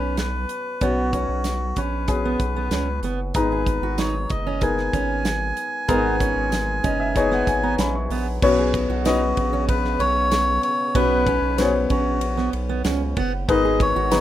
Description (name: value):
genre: piano-driven pop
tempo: 95 BPM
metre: 4/4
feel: straight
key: G# minor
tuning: A4 = 444 Hz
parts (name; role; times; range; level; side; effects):
- melodica; melody; 0.0-14.2 s; F#4 to G#5; -25 LUFS; left 1 dB; none
- warm upright piano; accompaniment; 0.0-14.2 s; G#2 to C#6; -24 LUFS; left 4 dB; none
- fingerpicked steel-string acoustic guitar; riff; 0.0-14.2 s; B3 to G#4; -28 LUFS; right 8 dB; none
- round analog bass; bass; 0.0-14.2 s; F#1 to C#2; -26 LUFS; right 1 dB; none
- modern studio drum kit; drums; 0.2-14.2 s; crash cymbal, hi-hat, kick drum, ride cymbal, snare drum; -27 LUFS; right 1 dB; none
- tambourine; percussion; 0.2-14.2 s; none; -39 LUFS; left 4 dB; none
- dark French horn section; second line; 8.4-14.2 s; C#3 to D#4; -31 LUFS; right 4 dB; none
room: little or no reverb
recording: rough home demo mix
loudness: -19 LUFS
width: side -12 dB against mid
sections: 0.0-8.4 A section; 8.4-14.2 B section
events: upright piano fill 6.5-8.4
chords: 0.0 G#madd9; 8.4 Bsus2; 13.5 G#madd9